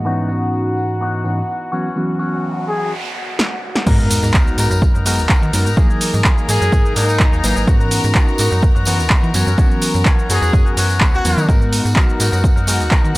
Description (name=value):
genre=filtered disco house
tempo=126 BPM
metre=4/4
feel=swing 53% on 16ths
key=G# minor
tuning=A4 = 440 Hz
part: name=mellow tine electric piano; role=accompaniment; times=0.0-13.2 s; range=G#2 to B4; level=-22 LUFS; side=equal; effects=phaser, vintage 12-bit sampler grit, sidechain pumping, low-pass filter
part: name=rich chamber string section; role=sustained chords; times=0.0-13.2 s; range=F#4 to A#5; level=-26 LUFS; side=left 1 dB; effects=sidechain pumping, low-pass filter
part: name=electric guitar with an envelope filter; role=riff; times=0.0-13.2 s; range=E3 to A#4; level=-24 LUFS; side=left 3 dB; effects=sidechain pumping, low-pass filter
part: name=tambourine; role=percussion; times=0.1-13.2 s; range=none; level=-28 LUFS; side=right 1 dB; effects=sidechain pumping on perc, low-pass filter on perc
part: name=noise sweep and sub drop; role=sound effects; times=2.3-5.8 s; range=none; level=-26 LUFS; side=right 1 dB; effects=none
part: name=warm trumpet section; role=melody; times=2.7-2.9, 6.5-11.5 s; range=D#4 to G#4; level=-23 LUFS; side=left 1 dB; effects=sidechain pumping, low-pass filter
part: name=punchy analog drum machine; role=drums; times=3.4-13.2 s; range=crash cymbal, handclaps, hi-hat, shaker, snare drum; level=-20 LUFS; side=equal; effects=sidechain pumping on cymbals, sidechain pumping on perc, sidechain pumping on hats
part: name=slap-like FM bass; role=bass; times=3.9-13.2 s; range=G#1 to E3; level=-18 LUFS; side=equal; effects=sidechain pumping, low-pass filter
part: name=electronic kick drum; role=drums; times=3.9-13.0 s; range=none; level=-14 LUFS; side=equal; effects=none
room=little or no reverb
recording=dry, gritty hardware recording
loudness=-13 LUFS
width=side -20 dB against mid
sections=0.0-3.9 A section; 3.9-13.2 B section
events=filter sweep 0.0-3.9; noise sweep 2.3-3.9; drum fill 3.4-3.9; drop 3.9-13.2; impact 3.9-5.8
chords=0.1 C#m11/G#; 1.7 F#7sus4; 3.9 G#m9; 5.8 Emaj9#11; 7.7 C#m11/G#; 9.3 F#7sus4; 11.5 G#m9